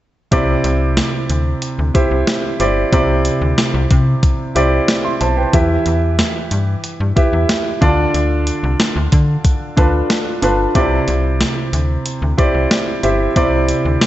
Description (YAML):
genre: 1980s-style pop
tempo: 92 BPM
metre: 4/4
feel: straight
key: C major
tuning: A4 = 443 Hz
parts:
  - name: clear grand piano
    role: accompaniment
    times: 0.3-14.1 s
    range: C3 to C6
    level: -17 LUFS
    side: right 1 dB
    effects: none
  - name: slap-like FM bass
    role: bass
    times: 0.3-14.0 s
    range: G1 to D3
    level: -18 LUFS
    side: equal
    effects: none
  - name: clean 12-bit digital drum machine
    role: drums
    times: 0.3-14.1 s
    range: hi-hat, kick drum, snare drum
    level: -17 LUFS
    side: equal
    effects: none
room: moderate scoring stage reverb, RT60 2.0 s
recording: dark, warm production, nothing above 8.0 kHz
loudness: -13 LUFS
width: side -14 dB against mid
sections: 0.3-14.1 A section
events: none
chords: 0.3 Cadd9; 5.5 Em; 7.8 Dm; 10.8 Cadd9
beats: | 0.32 0.97 1.62 2.27 | 2.93 3.58 4.23 4.88 | 5.54 6.19 6.84 7.49 | 8.14 8.80 9.45 10.10 | 10.75 11.41 12.06 12.71 | 13.36 14.01